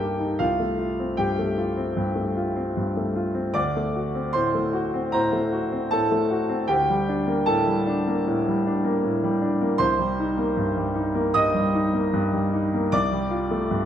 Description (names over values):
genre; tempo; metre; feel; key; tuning
neoclassical minimalist piano; 77 BPM; 4/4; rubato; G minor; A4 = 441 Hz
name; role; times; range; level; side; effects
clear concert grand piano; solo; 0.0-13.9 s; C2 to Eb6; -21 LUFS; equal; none
room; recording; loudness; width
wet recital hall reverb, RT60 1.5 s; none; -21 LUFS; side -10 dB against mid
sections
0.0-13.9 A section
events
none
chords
0.4 Fadd9/C; 3.6 D7; 6.7 Gmadd9/D; 9.8 Cm7; 12.9 Fadd9/C